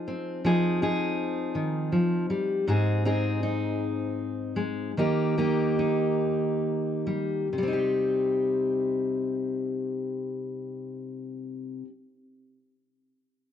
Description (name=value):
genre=folk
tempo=43-54 BPM (dotted quarters)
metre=6/8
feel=straight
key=C minor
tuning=A4 = 440 Hz
part: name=fingerpicked steel-string acoustic guitar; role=accompaniment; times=0.0-11.9 s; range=Ab2 to Ab4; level=-25 LUFS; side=left 1 dB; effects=none
room=light reverb, studio reverb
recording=dry, close 1970s-style studio recording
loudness=-25 LUFS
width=side -9 dB against mid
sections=0.0-7.5 A section; 7.5-10.3 B section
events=slowing down 2.7-7.5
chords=0.0 Fm7; 2.7 Ab; 5.0 Eb; 7.5 Cm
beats=| 0.44 1.55 | 2.66 3.79 | 4.95 6.19 | 7.52 8.92